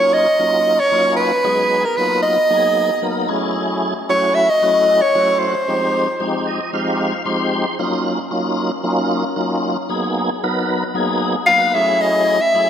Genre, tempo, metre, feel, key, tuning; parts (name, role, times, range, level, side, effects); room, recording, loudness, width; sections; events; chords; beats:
jazz; 114 BPM; 4/4; swing 55% on 16ths; A4 = 440 Hz
clear soprano saxophone; melody; 0.0-6.5, 11.5-12.7 s; Bb4 to F5; -14 LUFS; equal
tonewheel organ; accompaniment; 0.0-12.7 s; F3 to C6; -19 LUFS; equal; slow rotary speaker, chorus vibrato
wet lush hall reverb, RT60 2.1 s; bright 1980s-style digital production; -15 LUFS; side -9 dB against mid
0.0-12.7 A section
tonewheel organ fill 6.2-7.8
0.0 Ebm9; 1.5 Abm9; 3.3 Gbm9; 5.7 Fm9; 7.8 Ebm9; 9.9 Abm9; 11.8 Gbm9
0.40 0.93 | 1.46 1.98 2.51 3.04 | 3.56 4.09 4.62 5.14 | 5.67 6.20 6.73 7.26 | 7.79 8.31 8.84 9.37 | 9.90 10.43 10.96 11.49 | 12.02 12.55